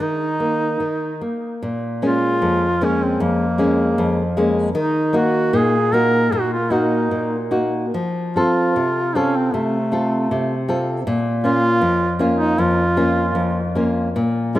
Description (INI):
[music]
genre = fado-style ballad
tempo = 72-80 BPM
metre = 2/4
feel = rubato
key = Bb minor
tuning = A4 = 440 Hz
[part]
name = clear duduk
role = melody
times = 0.0-14.6 s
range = A3 to Bb4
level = -20 LUFS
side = right 1 dB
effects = none
[part]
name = nylon-string guitar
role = accompaniment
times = 0.0-14.6 s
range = F2 to A4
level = -18 LUFS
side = left 1 dB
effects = none
[sound]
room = moderate lush hall reverb, RT60 2.7 s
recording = rough home demo mix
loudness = -16 LUFS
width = side -14 dB against mid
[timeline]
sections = 0.0-1.6 A section; 1.6-14.2 B section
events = none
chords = 0.0 Eb5; 1.6 Bbm7; 4.8 Ebm; 7.9 F; 11.1 Bbm